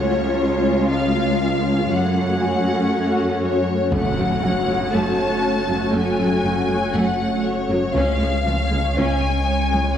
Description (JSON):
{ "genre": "cinematic", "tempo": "119 BPM", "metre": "4/4", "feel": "straight", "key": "F# harmonic minor", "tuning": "A4 = 436 Hz", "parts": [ { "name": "warm symphonic violin section", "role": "melody", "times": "0.0-10.0 s", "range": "C#5 to A5", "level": "-24 LUFS", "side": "left 4 dB", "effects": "none" }, { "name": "warm symphonic viola section", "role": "accompaniment", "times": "0.0-9.8 s", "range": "C#3 to F#4", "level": "-24 LUFS", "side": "right 1 dB", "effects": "none" }, { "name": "phased analog pad", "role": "sustained chords", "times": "0.0-10.0 s", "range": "G#3 to C#5", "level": "-24 LUFS", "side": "equal", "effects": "phaser, chorus" }, { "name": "rich symphonic cello section", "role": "bass", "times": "0.0-9.8 s", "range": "C#2 to F#2", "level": "-23 LUFS", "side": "right 1 dB", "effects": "none" }, { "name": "clear grand piano", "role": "texture", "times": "0.0-10.0 s", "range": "F#4 to G#5", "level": "-34 LUFS", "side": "left 1 dB", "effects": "none" }, { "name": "punchy sub bass", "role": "bass", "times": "3.9-10.0 s", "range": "F#1 to C#2", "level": "-26 LUFS", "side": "equal", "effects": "none" }, { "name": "impact", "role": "sound effects", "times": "3.9-5.9 s", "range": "none", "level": "-29 LUFS", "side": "equal", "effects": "none" } ], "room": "wet scoring stage reverb, RT60 2.0 s", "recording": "heard from further back in the room, small room ambience", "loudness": "-17 LUFS", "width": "side -9 dB against mid", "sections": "0.0-3.9 A section; 3.9-10.0 B section", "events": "impact 3.9-5.9", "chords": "0.0 C#; 1.9 F#m; 8.0 C#", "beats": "0.39 0.90 1.40 | 1.90 2.41 2.91 3.42 | 3.92 4.42 4.93 5.43 | 5.94 6.44 6.95 7.45 | 7.96 8.46 8.96 9.47 | 9.97" }